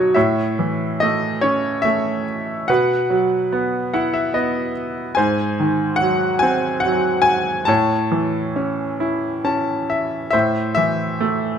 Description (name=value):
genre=classical, lyrical solo piano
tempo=71 BPM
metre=3/4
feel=rubato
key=A lydian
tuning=A4 = 440 Hz
part: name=bright grand piano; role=solo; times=0.0-11.6 s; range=G#2 to A5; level=-17 LUFS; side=equal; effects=none
room=light reverb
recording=close, detailed microphones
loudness=-17 LUFS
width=side -8 dB against mid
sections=0.2-10.3 A section; 10.3-11.6 B section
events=grand piano fill 0.0, 3.5-5.2, 9.0-10.3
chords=0.2 A; 2.7 Bsus4; 5.2 G#7; 7.7 A; 10.3 Am